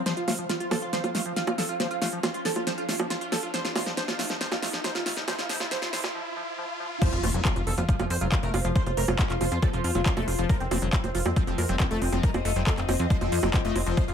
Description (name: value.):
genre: psychedelic trance.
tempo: 138 BPM.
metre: 4/4.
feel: straight.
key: F major.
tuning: A4 = 440 Hz.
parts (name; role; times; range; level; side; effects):
bubbling stepped-filter texture; sustained chords; 0.0-6.1 s; F3; -42 LUFS; right 3 dB; none.
liquid acid bass; riff; 0.0-14.0 s; Eb3 to A3; -36 LUFS; moving between left 8 dB and right 8 dB; chorus, auto-pan, sidechain pumping, digital delay.
riser and impact; sound effects; 0.3-8.8 s; none; -36 LUFS; equal; none.
ethereal airy pad; texture; 0.0-14.1 s; F4 to F5; -35 LUFS; left 2 dB; ensemble chorus, built-in reverb, phaser, sidechain pumping.
supersaw stab; melody; 0.1-14.1 s; C4 to Eb5; -32 LUFS; right 2 dB; phaser, sidechain pumping, digital delay.
big-room dance drum kit; drums; 0.1-14.1 s; bongos, crash cymbal, handclaps, hi-hat, snare drum; -30 LUFS; right 1 dB; none.
electronic kick drum; drums; 7.0-14.1 s; none; -25 LUFS; left 1 dB; overdrive.
plucky analog bass; bass; 7.1-14.1 s; F1 to F2; -28 LUFS; left 1 dB; tube saturation.
resonant blip pluck; second line; 7.2-8.1 s; C4 to F4; -44 LUFS; right 3 dB; none.
room: light reverb.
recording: high-pass filter.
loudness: -24 LUFS.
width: side -8 dB against mid.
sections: 0.0-7.0 A section; 7.0-14.1 B section.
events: build-up 0.0-7.0; drum fill 0.0-6.1; filter sweep on acid bass 0.0-7.0; filter sweep on supersaw synth 0.0-7.0; filter sweep 0.0-7.0; riser 0.3-7.0; break 6.1-7.0; drop 7.0-14.1; impact 7.0-8.8.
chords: 0.0 F5.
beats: | 0.06 0.49 0.93 1.36 | 1.80 2.23 2.67 3.10 | 3.54 3.97 4.41 4.84 | 5.28 5.71 6.15 6.58 | 7.02 7.45 7.89 8.32 | 8.76 9.19 9.62 10.06 | 10.49 10.93 11.36 11.80 | 12.23 12.67 13.10 13.54 | 13.97.